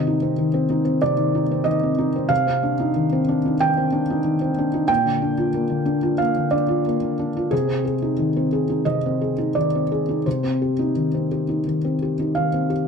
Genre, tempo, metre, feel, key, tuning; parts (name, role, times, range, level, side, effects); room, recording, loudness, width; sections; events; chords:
neoclassical minimalist piano; 91 BPM; 4/4; uneven beats, rubato; C minor; A4 = 440 Hz
felt-muted upright piano; solo; 0.0-12.9 s; Bb2 to G5; -19 LUFS; equal
moderate studio reverb, RT60 0.7 s; dark, warm production; -19 LUFS; side -6 dB against mid
0.0-12.9 A section
0.0 Ab/C (rootless); 2.3 Cmadd9; 4.9 Bb; 7.5 Ab/C; 10.3 Cm